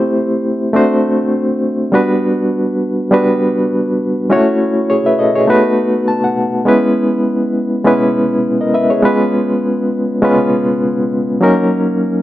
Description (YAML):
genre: soul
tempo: 101 BPM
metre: 4/4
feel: swing 54% on 16ths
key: unclear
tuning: A4 = 440 Hz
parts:
  - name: barky reed electric piano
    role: solo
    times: 0.0-12.2 s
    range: F#3 to A5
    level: -12 LUFS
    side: equal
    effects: overdrive, fast tremolo
room: light reverb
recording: none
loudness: -12 LUFS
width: side -14 dB against mid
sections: 0.0-12.2 A section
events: reed electric piano fill 5.8-6.7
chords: 0.0 Am7; 0.8 D7; 1.9 Gmaj7; 4.3 F#m7; 5.5 B7; 6.7 E6; 9.0 C#7; 11.4 F#6